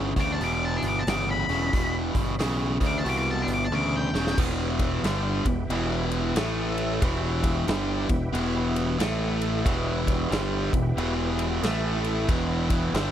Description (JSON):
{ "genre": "blues rock power trio and southern rock", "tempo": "91 BPM", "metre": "4/4", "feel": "swing 63% on 8ths", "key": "E minor", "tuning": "A4 = 440 Hz", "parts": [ { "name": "tonewheel organ", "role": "sustained chords", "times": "0.0-13.1 s", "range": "A3 to G5", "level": "-36 LUFS", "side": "right 4 dB", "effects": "slow rotary speaker, overdrive, chorus vibrato" }, { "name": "biting overdriven guitar", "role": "riff", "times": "0.0-13.1 s", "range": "E2 to A3", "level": "-27 LUFS", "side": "equal", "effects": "none" }, { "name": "growling fingered electric bass", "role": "bass", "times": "0.0-13.1 s", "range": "E1 to D2", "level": "-29 LUFS", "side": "equal", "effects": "overdrive" }, { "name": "octave-fuzz lead guitar", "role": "melody", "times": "0.2-4.4 s", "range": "G5 to D6", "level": "-30 LUFS", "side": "left 3 dB", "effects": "distortion" }, { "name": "huge arena drum kit", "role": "drums", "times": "0.2-13.1 s", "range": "crash cymbal, hi-hat, kick drum, ride cymbal, snare drum, toms", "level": "-29 LUFS", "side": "equal", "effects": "none" } ], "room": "small room ambience", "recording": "dry, close 1970s-style studio recording", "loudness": "-23 LUFS", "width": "side -10 dB against mid", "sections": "0.0-4.4 A section; 4.4-13.1 B section", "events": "lead electric guitar solo 0.0-4.4; drum fill 3.7-4.4", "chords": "0.0 Em; 6.4 A5; 7.0 Em; 9.0 A5; 9.7 Em; 11.6 A5; 12.3 Em", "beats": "0.41 1.07 | 1.74 2.40 3.06 3.72 | 4.38 5.04 5.70 6.36 | 7.02 7.68 8.34 9.00 | 9.65 10.31 10.97 11.63 | 12.29 12.95" }